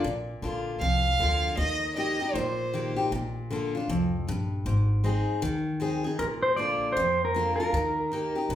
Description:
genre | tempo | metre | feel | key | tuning
honky-tonk and classic country | 156 BPM | 4/4 | swing 62% on 8ths | Bb mixolydian | A4 = 440 Hz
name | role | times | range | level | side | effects
picked steel-string acoustic guitar | accompaniment | 0.0-8.6 s | F2 to Ab4 | -29 LUFS | left 2 dB | none
upright bass | bass | 0.0-8.6 s | Ab1 to F2 | -31 LUFS | equal | none
rich fiddle | second line | 0.8-3.0 s | C5 to F5 | -28 LUFS | right 2 dB | none
pedal steel guitar | melody | 6.2-8.6 s | Bb4 to D5 | -25 LUFS | right 1 dB | none
room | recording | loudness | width
wet large studio reverb, RT60 0.8 s | band playing live in one room | -25 LUFS | side -11 dB against mid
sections
0.0-6.2 A section; 6.2-8.6 B section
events
fiddle solo 0.0-6.2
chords
0.0 Bb; 1.6 Eb; 3.1 Bb; 4.7 Ab; 6.2 Bb; 7.7 Eb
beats
| 0.05 0.43 0.81 1.20 | 1.58 1.97 2.35 2.73 | 3.12 3.50 3.89 4.27 | 4.66 5.04 5.43 5.81 | 6.20 6.58 6.96 7.35 | 7.73 8.12 8.50

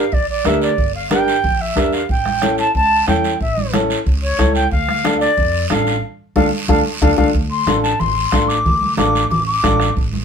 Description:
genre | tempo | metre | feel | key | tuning
latin, cumbia | 183 BPM | 4/4 | straight | D harmonic minor | A4 = 440 Hz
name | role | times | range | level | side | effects
concert flute | melody | 0.0-9.9 s | C#5 to D6 | -18 LUFS | equal | none
warm upright piano | accompaniment | 0.0-9.9 s | C#4 to Bb4 | -18 LUFS | left 2 dB | none
upright bass | bass | 0.1-10.2 s | G1 to F2 | -22 LUFS | right 1 dB | none
bombo | percussion | 0.1-10.1 s | none | -21 LUFS | right 1 dB | none
congas | percussion | 0.1-10.2 s | none | -24 LUFS | right 1 dB | none
guiro | percussion | 0.1-10.2 s | none | -28 LUFS | right 4 dB | none
room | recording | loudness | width
moderate studio reverb, RT60 0.5 s | band playing live in one room | -14 LUFS | side -6 dB against mid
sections
0.0-7.3 A section; 7.3-10.2 B section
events
band accent 6.0-7.3; flute solo 7.3-10.2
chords
0.0 Gm; 2.1 A7; 4.7 Dm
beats
0.12 0.45 | 0.78 1.11 1.44 1.76 | 2.09 2.42 2.75 3.08 | 3.40 3.73 4.06 4.39 | 4.72 5.05 5.37 5.70 | 6.03 6.36 6.69 7.01 | 7.34 7.67 8.00 8.32 | 8.65 8.98 9.31 9.63 | 9.96

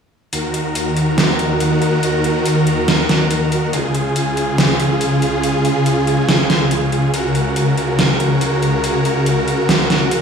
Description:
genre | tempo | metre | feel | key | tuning
heavy wobble dubstep | 141 BPM | 4/4 | half-time | Eb minor | A4 = 438 Hz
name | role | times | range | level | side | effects
supersaw chords | sustained chords | 0.3-10.2 s | Db2 to Bb4 | -15 LUFS | equal | vintage 12-bit sampler grit
dubstep drum kit | drums | 0.3-10.2 s | hi-hat, snare drum | -18 LUFS | right 1 dB | overdrive
room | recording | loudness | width
moderate digital room reverb, RT60 1.1 s, digital ambience | played on a big sound system in a bare room, large studio reverb, studio reverb | -14 LUFS | side -6 dB against mid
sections
0.3-10.2 A section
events
none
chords
0.3 Ebm; 3.7 Db; 7.1 Gb/Db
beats
| 0.33 0.75 1.18 1.60 | 2.03 2.46 2.88 3.31 | 3.73 4.16 4.58 5.01 | 5.43 5.86 6.29 6.71 | 7.14 7.56 7.99 8.41 | 8.84 9.26 9.69 10.12

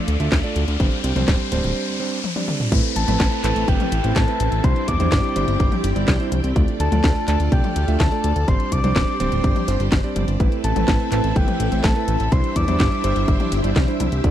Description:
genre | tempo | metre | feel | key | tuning
italo disco | 125 BPM | 4/4 | straight | A minor | A4 = 439 Hz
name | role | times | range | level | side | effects
string machine, full ensemble | sustained chords | 0.0-14.3 s | C4 to D6 | -28 LUFS | left 1 dB | ensemble chorus
warm electric grand piano | stabs | 0.0-14.3 s | G3 to E5 | -26 LUFS | right 6 dB | tape echo
riser and downlifter | sound effects | 0.0-6.6 s | none | -29 LUFS | left 3 dB | none
fat analog bass | bass | 0.1-14.3 s | D1 to E2 | -22 LUFS | equal | none
house drum kit | drums | 0.1-14.3 s | crash cymbal, handclaps, hi-hat, snare drum, toms | -25 LUFS | left 2 dB | none
electronic kick drum | drums | 0.3-14.3 s | none | -20 LUFS | equal | none
soft octave-layered synth lead | melody | 3.0-13.5 s | G5 to D6 | -26 LUFS | left 3 dB | chorus, tape echo
room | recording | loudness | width
little or no reverb | dry, close 1970s-style studio recording | -17 LUFS | side -11 dB against mid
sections
0.0-2.7 A section; 2.7-14.3 B section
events
riser 0.0-2.7; filter sweep on string machine 0.0-2.7; break 1.8-2.7; drum fill 2.2-2.7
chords
0.0 Dm; 0.8 Gsus4; 2.7 Amadd9; 4.6 Cadd9; 6.6 Dm; 8.5 Gsus4; 10.4 Amadd9; 12.3 Cadd9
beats
0.32 | 0.80 1.28 1.76 2.24 | 2.72 3.20 3.68 4.16 | 4.64 5.12 5.60 6.08 | 6.56 7.04 7.52 8.00 | 8.48 8.96 9.44 9.92 | 10.40 10.88 11.36 11.84 | 12.32 12.80 13.28 13.76 | 14.24

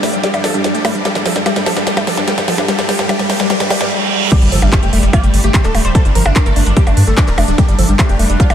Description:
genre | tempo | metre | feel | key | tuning
psychedelic trance | 147 BPM | 4/4 | straight | unclear | A4 = 442 Hz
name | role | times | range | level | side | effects
dense compressed supersaw | melody | 0.0-8.5 s | G3 to Bb4 | -20 LUFS | equal | phaser, sidechain pumping, diffuse ambient delay
overtone-sweeping drone | sustained chords | 0.0-8.5 s | G3 to D4 | -27 LUFS | right 2 dB | none
woody wave-folded pluck | riff | 0.0-8.5 s | F3 to D4 | -20 LUFS | moving between left 4 dB and right 2 dB | chorus, auto-pan, sidechain pumping, ping-pong delay
round analog bass | bass | 0.0-8.5 s | D1 to G2 | -14 LUFS | equal | tube saturation, high-pass filter
techno drum kit | drums | 0.0-8.5 s | crash cymbal, handclaps, hi-hat, percussion blips, snare drum | -18 LUFS | right 1 dB | none
riser, reverse cymbal and impact | sound effects | 0.0-6.0 s | none | -21 LUFS | right 1 dB | none
rich chamber string section | texture | 0.0-3.9 s | G3 to D6 | -30 LUFS | equal | none
electronic kick drum | drums | 4.3-8.5 s | none | -12 LUFS | equal | none
resonant blip pluck | second line | 5.1-8.5 s | Bb4 to D5 | -30 LUFS | right 3 dB | none
room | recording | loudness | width
moderate huge ambient reverb, RT60 7.2 s | dreamy mix soaked in reverb | -11 LUFS | side -9 dB against mid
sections
0.0-4.3 A section; 4.3-8.5 B section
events
build-up 0.0-4.3; drum fill 0.0-3.9; riser 0.0-3.9; filter sweep on synth arpeggio sound 0.0-4.3; reverse cymbal 3.5-4.3; drop 4.3-8.5; impact 4.3-6.0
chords
0.0 G5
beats
0.23 0.64 | 1.05 1.46 1.87 2.28 | 2.68 3.09 3.50 3.91 | 4.32 4.72 5.13 5.54 | 5.95 6.36 6.77 7.17 | 7.58 7.99 8.40

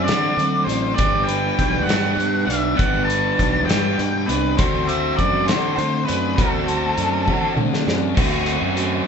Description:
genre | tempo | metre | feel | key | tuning
indie rock | 67 BPM (dotted quarters) | 6/8 | straight | unclear | A4 = 445 Hz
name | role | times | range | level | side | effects
octave-fuzz lead guitar | melody | 0.0-7.5 s | A4 to A5 | -22 LUFS | left 1 dB | distortion
biting overdriven guitar | riff | 0.0-9.1 s | D3 to C5 | -26 LUFS | left 6 dB | spring reverb
overdriven electric guitar | riff | 0.0-9.1 s | F#3 to G4 | -24 LUFS | right 5 dB | none
fuzz fingered electric bass | bass | 0.0-9.0 s | G1 to D3 | -24 LUFS | equal | overdrive
loose indie drum kit | drums | 0.1-8.9 s | crash cymbal, hi-hat, kick drum, snare drum, toms | -23 LUFS | equal | none
room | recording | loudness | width
moderate large studio reverb, RT60 1.3 s | band playing live in one room, nothing above 8.0 kHz | -17 LUFS | side -6 dB against mid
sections
0.0-8.2 A section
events
drum fill 7.3-8.2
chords
0.0 D7; 1.0 Gmaj7; 4.6 D7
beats
0.08 | 0.98 1.88 | 2.79 3.69 | 4.58 5.48 | 6.38 7.28 | 8.17 9.06

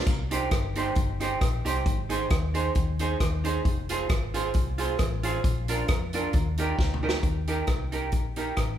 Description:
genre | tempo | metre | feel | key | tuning
ska | 134 BPM | 4/4 | swing 54% on 8ths | Eb major | A4 = 440 Hz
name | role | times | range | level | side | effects
archtop guitar, miked and amplified | accompaniment | 0.0-8.5 s | D4 to C5 | -29 LUFS | right 3 dB | dub echo
vintage muted fingered electric bass | bass | 0.1-8.8 s | F1 to F2 | -30 LUFS | equal | none
swinging big-band drum kit | drums | 0.1-8.7 s | hi-hat, kick drum, rim click, snare drum, splash cymbal, toms | -27 LUFS | equal | none
room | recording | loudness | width
moderate large studio reverb, RT60 1.1 s | band playing live in one room | -24 LUFS | side -10 dB against mid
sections
0.0-7.2 A section; 7.2-8.8 B section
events
drum fill 6.8-7.2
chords
0.1 Cm; 1.9 Ab; 3.6 Fm; 5.4 Bb; 6.3 Eb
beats
| 0.07 0.52 0.96 1.41 | 1.86 2.31 2.76 3.20 | 3.65 4.10 4.54 4.99 | 5.44 5.88 6.33 6.78 | 7.23 7.67 8.12 8.57

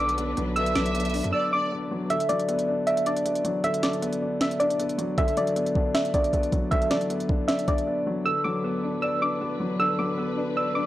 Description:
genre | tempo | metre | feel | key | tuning
hip hop, trap | 156 BPM | 4/4 | half-time | B minor | A4 = 440 Hz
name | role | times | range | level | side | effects
soft round pluck | melody | 0.0-10.9 s | D5 to E6 | -26 LUFS | right 1 dB | chorus, analog delay
dark grand piano | accompaniment | 0.0-10.9 s | D3 to D5 | -28 LUFS | left 2 dB | none
dark studio string section | sustained chords | 0.0-2.1, 8.3-10.9 s | F#3 to B4 | -34 LUFS | left 1 dB | none
distorted 808-style bass | bass | 0.0-1.3 s | B1 to F#2 | -31 LUFS | equal | distortion
trap drum kit | drums | 0.1-7.9 s | hi-hat, kick drum, snare drum | -28 LUFS | equal | overdrive
warm symphonic violin section | second line | 0.6-1.7 s | D5 to E5 | -32 LUFS | right 2 dB | analog delay
room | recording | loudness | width
studio reverb | dry, gritty hardware recording, transformer saturation, cassette tape | -23 LUFS | side -14 dB against mid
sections
0.0-2.1 A section; 2.1-8.3 B section; 8.3-10.9 A section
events
drums muted 1.3-2.1; break 7.9-8.3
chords
0.0 Bm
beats
0.18 | 0.56 0.95 1.33 1.72 | 2.10 2.49 2.87 3.25 | 3.64 4.02 4.41 4.79 | 5.18 5.56 5.95 6.33 | 6.72 7.10 7.49 7.87 | 8.26 8.64 9.02 9.41 | 9.79 10.18 10.56

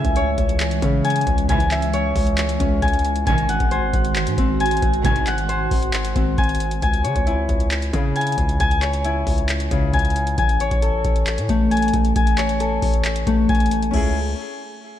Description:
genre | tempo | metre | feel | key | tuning
hip hop, trap | 135 BPM | 4/4 | half-time | C# harmonic minor | A4 = 443 Hz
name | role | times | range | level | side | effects
glassy FM pad | sustained chords | 0.0-6.8 s | D#3 to G#5 | -27 LUFS | right 2 dB | ensemble chorus, built-in reverb
Celtic harp | arpeggios | 0.0-14.1 s | C#3 to G#5 | -21 LUFS | left 3 dB | ping-pong delay
warm symphonic string section | stabs | 0.0-5.5 s | B#1 to E3 | -28 LUFS | right 6 dB | none
hard-hitting 808-style bass | bass | 0.0-14.3 s | G#1 to C#3 | -23 LUFS | equal | none
booming analog drum machine | drums | 0.0-14.1 s | crash cymbal, handclaps, hi-hat, kick drum | -22 LUFS | equal | none
room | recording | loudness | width
moderate lush hall reverb, RT60 1.8 s | dreamy mix soaked in reverb | -17 LUFS | side -11 dB against mid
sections
0.0-6.8 A section; 6.8-13.9 B section; 13.9-15.0 C section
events
none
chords
0.0 C#m; 3.3 G#7; 6.8 C#m; 10.4 Amaj7; 13.9 C#m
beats
0.16 0.60 1.05 | 1.49 1.94 2.38 2.82 | 3.27 3.71 4.16 4.60 | 5.05 5.49 5.93 6.38 | 6.82 7.27 7.71 8.16 | 8.60 9.05 9.49 9.94 | 10.38 10.82 11.27 11.71 | 12.16 12.60 13.05 13.49 | 13.94

